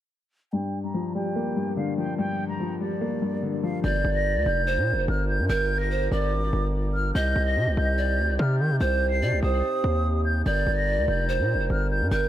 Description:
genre	hip hop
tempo	145 BPM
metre	4/4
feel	half-time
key	G minor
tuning	A4 = 441 Hz
part	breathy concert flute	melody	0.5-12.3 s	D5 to C7	-30 LUFS	equal	low-pass filter, analog delay
part	dark baby grand piano	accompaniment	0.5-3.9 s	G2 to Bb3	-26 LUFS	left 3 dB	low-pass filter, analog delay
part	breathy mellow pan flute	second line	3.8-12.3 s	Bb4 to Eb5	-28 LUFS	right 2 dB	analog delay
part	warm French horn section	sustained chords	3.8-12.3 s	C3 to Bb4	-34 LUFS	right 1 dB	none
part	distorted 808-style bass	bass	3.8-12.3 s	F1 to Eb3	-24 LUFS	equal	distortion
room	light reverb, small room ambience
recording	echo-heavy mix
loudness	-22 LUFS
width	side -12 dB against mid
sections	0.5-3.8 A section; 3.8-12.3 B section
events	filter sweep 0.5-3.8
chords	0.5 Gm7; 7.2 Cm; 10.5 Gm7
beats	| 0.53 0.94 1.36 1.77 | 2.18 2.60 3.01 3.43 | 3.84 4.25 4.67 5.08 | 5.50 5.91 6.32 6.74 | 7.15 7.56 7.98 8.39 | 8.80 9.22 9.63 10.05 | 10.46 10.87 11.29 11.70 | 12.12

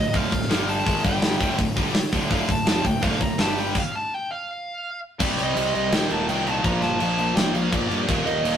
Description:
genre	heavy metal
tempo	166 BPM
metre	4/4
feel	straight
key	D phrygian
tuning	A4 = 440 Hz
part	high-gain lead guitar	melody	0.0-8.6 s	D5 to Bb5	-27 LUFS	equal	distortion
part	heavy high-gain guitar	riff	0.0-8.6 s	D2 to C4	-28 LUFS	left 6 dB	distortion
part	high-gain distorted guitar	riff	0.0-8.6 s	D2 to C4	-28 LUFS	right 5 dB	distortion
part	high-gain distorted guitar	riff	0.0-8.6 s	D2 to C4	-31 LUFS	left 1 dB	distortion
part	fuzz fingered electric bass	bass	0.0-8.6 s	D1 to G2	-30 LUFS	equal	overdrive
part	tight metal drum kit	drums	0.1-8.5 s	crash cymbal, hi-hat, kick drum, snare drum	-24 LUFS	equal	none
room	moderate stone room reverb, RT60 1.0 s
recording	rough rehearsal-room recording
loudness	-20 LUFS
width	side -9 dB against mid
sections	0.0-5.2 A section; 5.2-8.6 B section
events	stop 3.8-5.2; half time 5.2-8.6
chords	0.0 Dm; 0.5 G5; 0.9 G#5; 1.0 G5; 1.4 Dm; 3.4 G5; 3.8 N.C.; 5.2 Cm; 5.9 Eb5; 6.6 Bb5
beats	0.14 0.50 | 0.86 1.23 1.59 1.95 | 2.31 2.67 3.03 3.40 | 3.76 4.12 4.48 4.84 | 5.20 5.56 5.92 6.29 | 6.65 7.01 7.37 7.73 | 8.09 8.45

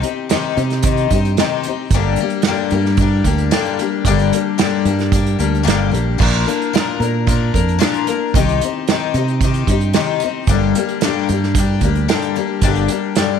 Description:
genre	folk rock and heartland rock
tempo	112 BPM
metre	4/4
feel	straight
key	unclear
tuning	A4 = 440 Hz
part	picked twelve-string acoustic guitar	accompaniment	0.0-13.4 s	G2 to Bb4	-18 LUFS	left 10 dB	none
part	unplugged drum kit	drums	0.0-13.3 s	crash cymbal, hi-hat, kick drum, snare drum	-19 LUFS	right 4 dB	none
part	fingered electric bass	bass	0.6-12.9 s	G1 to C3	-17 LUFS	right 2 dB	none
room	light reverb, studio ambience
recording	1960s-style stereo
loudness	-14 LUFS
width	side -7 dB against mid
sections	0.0-13.4 A section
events	none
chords	0.0 Cm; 1.9 Gm; 6.2 Bb; 8.3 Cm; 10.5 Gm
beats	0.30 0.84 1.37 | 1.91 2.44 2.98 3.52 | 4.05 4.59 5.12 5.66 | 6.19 6.73 7.26 7.80 | 8.34 8.87 9.41 9.95 | 10.48 11.02 11.55 12.09 | 12.62 13.16

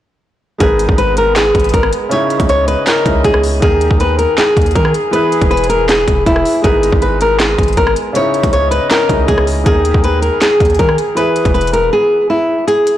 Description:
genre	hip hop, trap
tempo	159 BPM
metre	4/4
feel	half-time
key	G# minor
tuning	A4 = 440 Hz
part	flamenco guitar	melody	0.6-13.0 s	E4 to C#5	-13 LUFS	left 1 dB	tape echo
part	felt-muted upright piano	accompaniment	0.6-12.7 s	C#3 to B4	-20 LUFS	right 1 dB	none
part	warm French horn section	sustained chords	0.6-12.7 s	D#3 to D#5	-22 LUFS	left 1 dB	none
part	long sustained 808-style bass	bass	0.6-11.9 s	E1 to D#3	-18 LUFS	equal	none
part	trap drum kit	drums	0.6-13.0 s	handclaps, hi-hat, kick drum, rim click, snare drum	-15 LUFS	equal	none
room	light reverb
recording	blown-out, overdriven recording, overdrive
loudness	-10 LUFS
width	side -12 dB against mid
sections	0.6-12.7 A section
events	drums muted 11.9-12.7; kick muted 12.7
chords	0.6 G#madd9; 2.1 C#madd9; 3.6 D#sus4; 5.1 E; 6.6 G#madd9; 8.2 C#madd9; 9.7 D#sus4; 11.2 E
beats	| 0.60 0.98 1.36 1.74 | 2.11 2.49 2.87 3.25 | 3.62 4.00 4.38 4.75 | 5.13 5.51 5.89 6.26 | 6.64 7.02 7.40 7.77 | 8.15 8.53 8.91 9.28 | 9.66 10.04 10.42 10.79 | 11.17 11.55 11.93 12.30 | 12.68

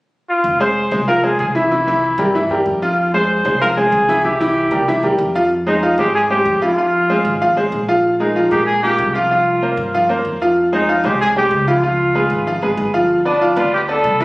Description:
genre	latin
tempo	190 BPM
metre	4/4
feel	straight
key	F minor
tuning	A4 = 440 Hz
part	warm trumpet	melody	0.3-14.2 s	D4 to C5	-17 LUFS	equal	none
part	upright bass	bass	0.4-14.2 s	F1 to Bb2	-25 LUFS	equal	none
part	bright upright piano	accompaniment	0.6-14.2 s	E3 to F5	-16 LUFS	equal	none
room	moderate large studio reverb, RT60 1.4 s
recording	recorded on a phone in the room, studio reverb, compression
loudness	-13 LUFS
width	side -21 dB against mid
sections	0.4-5.5 A section; 5.5-14.2 B section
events	none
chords	0.4 Fm; 1.7 C7; 3.0 Fm; 4.2 C7; 5.5 Fm9; 6.8 Ab69; 8.0 Bb5; 9.3 C7sus4; 10.6 Fm9; 11.8 Db7; 13.1 G7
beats	0.13 | 0.44 0.76 1.08 1.39 | 1.71 2.03 2.34 2.66 | 2.98 3.29 3.61 3.93 | 4.24 4.56 4.88 5.19 | 5.51 5.83 6.14 6.46 | 6.77 7.09 7.41 7.72 | 8.04 8.36 8.67 8.99 | 9.30 9.62 9.94 10.25 | 10.57 10.88 11.20 11.52 | 11.83 12.15 12.46 12.78 | 13.10 13.41 13.73 14.04

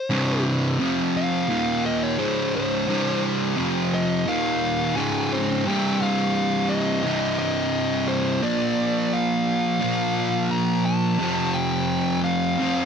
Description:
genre	metal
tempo	86 BPM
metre	4/4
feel	straight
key	C minor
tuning	A4 = 445 Hz
part	fuzz lead guitar	melody	0.0-12.9 s	C5 to Bb5	-27 LUFS	left 2 dB	distortion, ping-pong delay
part	fuzz guitar	riff	0.1-12.9 s	C2 to Bb3	-22 LUFS	right 1 dB	distortion
room	light reverb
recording	dark, warm production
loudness	-20 LUFS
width	side -7 dB against mid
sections	0.0-5.7 A section; 5.7-12.9 B section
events	lead electric guitar solo 0.0-5.7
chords	0.0 C5; 0.8 F5; 1.5 Eb5; 2.2 Db5; 2.9 C5; 3.6 F5; 4.3 Eb5; 5.0 Db5; 5.7 Cm; 8.4 Bb; 11.2 F5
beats	| 0.10 0.79 1.49 2.18 | 2.88 3.57 4.27 4.96 | 5.66 6.35 7.04 7.74 | 8.43 9.12 9.82 10.51 | 11.21 11.90 12.59

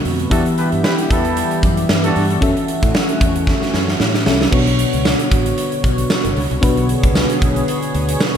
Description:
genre	1980s-style pop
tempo	114 BPM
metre	4/4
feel	swing 55% on 16ths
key	B dorian from 4.5 s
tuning	A4 = 441 Hz
part	mellow FM electric piano	accompaniment	0.0-8.4 s	B2 to E5	-20 LUFS	left 3 dB	chorus
part	chorused pulse-width pad	sustained chords	0.0-8.4 s	D3 to C#5	-23 LUFS	right 1 dB	none
part	fretless electric bass	bass	0.1-8.1 s	F#1 to A2	-21 LUFS	equal	ensemble chorus
part	big rock drum kit	drums	0.1-8.3 s	crash cymbal, hi-hat, kick drum, snare drum, tambourine	-17 LUFS	right 1 dB	gated reverb
part	warm horn section	stabs	0.3-2.2 s	B3 to B4	-23 LUFS	right 2 dB	ping-pong delay
room	light reverb, studio reverb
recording	none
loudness	-14 LUFS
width	side -8 dB against mid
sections	0.0-4.5 A section; 4.5-8.4 B section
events	drum fill 3.5-4.5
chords	0.3 Em; 2.4 F#m7; 4.5 Bmadd9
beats	| 0.31 0.84 1.37 1.89 | 2.42 2.94 3.47 4.00 | 4.52 5.05 5.58 6.10 | 6.63 7.16 7.68 8.21

